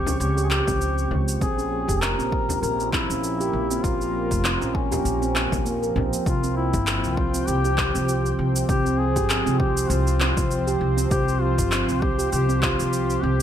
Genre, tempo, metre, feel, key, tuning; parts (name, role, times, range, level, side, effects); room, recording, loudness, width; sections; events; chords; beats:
organic downtempo; 99 BPM; 4/4; swing 56% on 16ths; A4 = 440 Hz
warm duduk; melody; 0.0-13.4 s; Db4 to Bb4; -27 LUFS; left 4 dB; digital delay
warm analog pad; sustained chords; 0.0-13.4 s; F3 to Db6; -30 LUFS; left 1 dB; chorus, tremolo, sidechain pumping
handpan; arpeggios; 0.0-13.4 s; Bb3 to Bb4; -28 LUFS; right 7 dB; digital delay
upright bass; bass; 0.0-13.4 s; F1 to Db2; -25 LUFS; equal; sidechain pumping
electronic cabasa and handclaps; drums; 0.1-13.2 s; -28 LUFS; equal; overdrive
frame drum; percussion; 0.1-6.1 s; -32 LUFS; left 4 dB
electronic kick drum; drums; 0.7-12.8 s; -27 LUFS; equal
light reverb, small room ambience; -20 LUFS; side -10 dB against mid
0.0-6.3 A section; 6.3-13.4 B section
kick drops out 5.7-6.3
0.0 Db; 1.4 Bbm; 6.3 Csus4
0.20 0.81 | 1.41 2.02 2.63 3.23 | 3.84 4.44 5.05 5.66 | 6.26 6.87 7.47 8.08 | 8.69 9.29 9.90 10.51 | 11.11 11.72 12.32 12.93